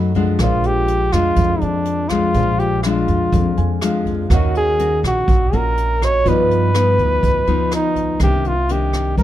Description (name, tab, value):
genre	bossa nova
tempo	123 BPM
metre	4/4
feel	straight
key	unclear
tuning	A4 = 440 Hz
part	nylon-string guitar	accompaniment	0.0-9.2 s	E#2 to F#4	-21 LUFS	left 5 dB	none
part	warm grand piano	accompaniment	0.0-8.2 s	E#4 to B5	-28 LUFS	right 5 dB	none
part	upright bass	bass	0.0-9.2 s	A#1 to G2	-19 LUFS	right 1 dB	none
part	jazz brush drum kit	drums	0.1-9.2 s	hi-hat, kick drum, rim click	-23 LUFS	right 1 dB	none
part	mellow flugelhorn	melody	0.4-9.2 s	D4 to C#5	-19 LUFS	equal	none
room	light reverb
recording	dark, warm production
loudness	-14 LUFS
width	side -12 dB against mid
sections	0.0-8.2 A section; 8.2-9.2 B section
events	grand piano fill 0.0-0.4, 3.3-4.3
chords	0.4 A#7; 4.3 D#m7; 6.3 G7b13; 8.2 Cm9